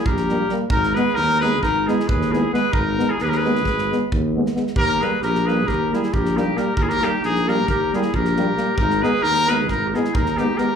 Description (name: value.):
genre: balkan folk, Balkan brass band.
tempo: 268 BPM (eighths).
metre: 9/8.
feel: straight.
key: unclear.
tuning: A4 = 439 Hz.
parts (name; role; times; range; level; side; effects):
clear trumpet; melody; 0.0-10.8 s; G4 to B4; -22 LUFS; left 1 dB; plate reverb, slapback echo.
clear clarinet; second line; 0.0-10.8 s; D#4 to G#4; -25 LUFS; equal; plate reverb, slapback echo.
mellow tuba; bass; 0.1-10.5 s; G#1 to D#2; -23 LUFS; equal; none.
natural country drum kit; percussion; 0.1-10.6 s; kick drum, snare drum; -27 LUFS; right 1 dB; none.
mellow euphonium; accompaniment; 0.3-10.7 s; A#3 to B3; -26 LUFS; left 6 dB; plate reverb, slapback echo.
warm euphonium; accompaniment; 0.3-10.7 s; G3 to G#3; -27 LUFS; right 8 dB; plate reverb, slapback echo.
room: moderate club reverb, RT60 0.7 s.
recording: live gig heard through the venue's PA, club reverb.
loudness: -17 LUFS.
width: side -7 dB against mid.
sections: 0.0-10.8 A section.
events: none.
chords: 0.0 D# (rootless); 0.7 G#m; 4.7 D#; 8.8 G#m.